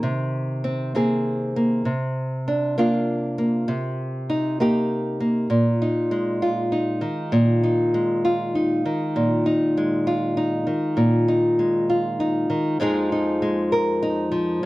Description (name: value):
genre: folk, solo fingerstyle acoustic guitar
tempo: 66 BPM (dotted quarters)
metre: 6/8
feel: straight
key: unclear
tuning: A4 = 440 Hz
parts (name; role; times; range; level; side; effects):
- nylon-string guitar; solo; 0.0-14.7 s; F2 to Bb4; -20 LUFS; equal; none
room: light reverb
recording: dry, close 1970s-style studio recording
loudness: -20 LUFS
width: side -18 dB against mid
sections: 0.0-5.5 A section; 5.5-14.7 B section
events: none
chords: 0.0 Abadd9/C; 1.9 Bbadd9/C; 3.7 Cm7; 5.5 Bb7sus4; 12.8 Fm7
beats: | 0.03 0.94 | 1.86 2.77 | 3.68 4.59 | 5.50 6.42 | 7.33 8.24 | 9.15 10.06 | 10.97 11.89 | 12.80 13.71 | 14.62